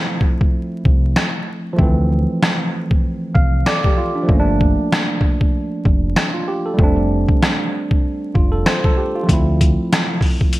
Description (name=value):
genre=hip hop, boom-bap hip-hop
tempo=96 BPM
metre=4/4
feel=swing 59% on 16ths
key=D minor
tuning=A4 = 440 Hz
part: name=tine electric piano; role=accompaniment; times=0.0-10.6 s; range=E3 to F5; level=-20 LUFS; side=right 1 dB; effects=cassette tape, high-pass filter, low-pass filter
part: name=boom bap sampler-style drum kit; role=drums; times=0.2-10.6 s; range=hi-hat, kick drum, rim click, snare drum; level=-16 LUFS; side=equal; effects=gated reverb
part: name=deep dub fingered electric bass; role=bass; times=0.9-9.7 s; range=F1 to D2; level=-18 LUFS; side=equal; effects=none
room=light reverb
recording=bright 1980s-style digital production, vinyl crackle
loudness=-15 LUFS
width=side -17 dB against mid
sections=0.0-10.6 A section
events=break 0.0-9.3; tine electric piano fill 3.0-4.3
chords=0.0 Dm9; 4.3 Gm9; 6.8 F6; 9.3 Dm9